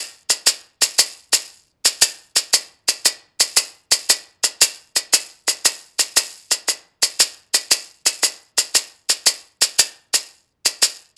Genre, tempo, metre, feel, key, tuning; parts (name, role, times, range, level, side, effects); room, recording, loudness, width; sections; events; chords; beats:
southern african traditional; 116 BPM (dotted quarters); 12/8; straight
maracas; percussion; 0.3-11.0 s; -15 LUFS; equal
light reverb; dark, warm production; -18 LUFS; mono
0.0-11.2 A section
0.30 | 0.82 1.34 1.85 2.37 | 2.88 3.40 3.92 4.43 | 4.95 5.47 5.99 6.50 | 7.02 7.54 8.06 8.57 | 9.09 9.61 10.13 10.65